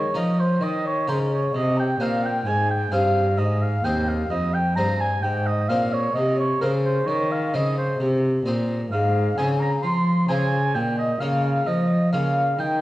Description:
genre	classical, baroque-style sonata movement with continuo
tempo	65 BPM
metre	4/4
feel	straight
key	Ab major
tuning	A4 = 440 Hz
part	mellow hollow wooden flute	melody	0.0-12.8 s	Bb4 to C6	-29 LUFS	left 4 dB	none
part	warm oboe	second line	0.0-12.8 s	Bb4 to C6	-26 LUFS	right 2 dB	none
part	harpsichord	accompaniment	0.0-12.8 s	Eb2 to Db5	-27 LUFS	left 1 dB	none
part	warm cello	bass	0.0-12.8 s	Eb2 to F3	-23 LUFS	equal	none
room	moderate recital hall reverb, RT60 1.5 s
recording	worn, warbling old tape, cassette tape, warbly pitch drift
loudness	-20 LUFS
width	side -16 dB against mid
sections	0.0-12.8 A section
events	none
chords	0.0 Eb5; 1.5 Ab; 8.9 Fm/Ab; 10.7 Bbm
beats	0.61 | 1.54 2.46 3.38 4.30 | 5.22 6.15 7.07 7.99 | 8.91 9.83 10.74 11.66 | 12.59

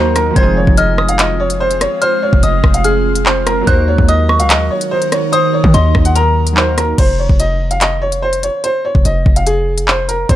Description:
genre	hip hop, drill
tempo	145 BPM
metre	4/4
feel	half-time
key	F phrygian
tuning	A4 = 443 Hz
part	clear upright piano	melody	0.0-10.4 s	Ab4 to Gb5	-16 LUFS	equal	none
part	glassy digital keys	accompaniment	0.0-7.0 s	F3 to Bb4	-22 LUFS	right 2 dB	chorus
part	ethereal airy pad	sustained chords	0.0-7.0 s	Eb3 to Bb4	-22 LUFS	right 2 dB	ensemble chorus, built-in reverb, phaser
part	hard-hitting 808-style bass	bass	0.0-10.4 s	F1 to Eb3	-15 LUFS	equal	none
part	drill drum kit	drums	0.2-10.4 s	crash cymbal, handclaps, hi-hat, kick drum, rim click	-14 LUFS	equal	none
part	soft synth bell	second line	0.4-6.5 s	Bb5 to Ab6	-20 LUFS	left 2 dB	chorus, phaser, tape echo
room	little or no reverb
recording	none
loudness	-10 LUFS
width	side -13 dB against mid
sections	0.0-7.0 A section; 7.0-10.4 B section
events	none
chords	0.4 Fm; 3.7 Ebm; 7.0 F5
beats	| 0.36 0.78 1.19 1.60 | 2.02 2.43 2.85 3.26 | 3.67 4.09 4.50 4.91 | 5.33 5.74 6.16 6.57 | 6.98 7.40 7.81 8.22 | 8.64 9.05 9.47 9.88 | 10.29

